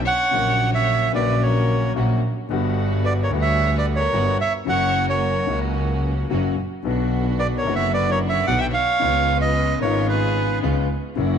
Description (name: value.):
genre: tango.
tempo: 111 BPM.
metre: 4/4.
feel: rubato.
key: unclear.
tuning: A4 = 442 Hz.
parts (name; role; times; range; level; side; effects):
bandoneon; melody; 0.1-10.6 s; B4 to G5; -22 LUFS; right 4 dB; none.
rich violin; second line; 0.1-10.6 s; G#4 to E5; -30 LUFS; left 7 dB; none.
dark baby grand piano; accompaniment; 0.3-11.4 s; F#1 to F#4; -25 LUFS; left 10 dB; none.
rich chamber string section; stabs; 0.3-11.4 s; G3 to F#4; -31 LUFS; right 8 dB; none.
dark double bass; bass; 0.3-11.4 s; F#1 to D2; -23 LUFS; right 2 dB; none.
room: moderate echo chamber reverb, RT60 2.2 s.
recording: 1960s-style stereo with parts hard left and right.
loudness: -18 LUFS.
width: side -8 dB against mid.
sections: 0.0-11.4 A section.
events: none.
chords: 0.3 F#/A#; 2.5 Gmaj7; 4.7 F#; 6.8 Bm; 9.0 C#7.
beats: | 0.33 0.87 1.42 1.96 | 2.50 3.05 3.59 4.13 | 4.67 5.22 5.76 6.30 | 6.85 7.39 7.93 8.47 | 9.01 9.55 10.09 10.63 | 11.17.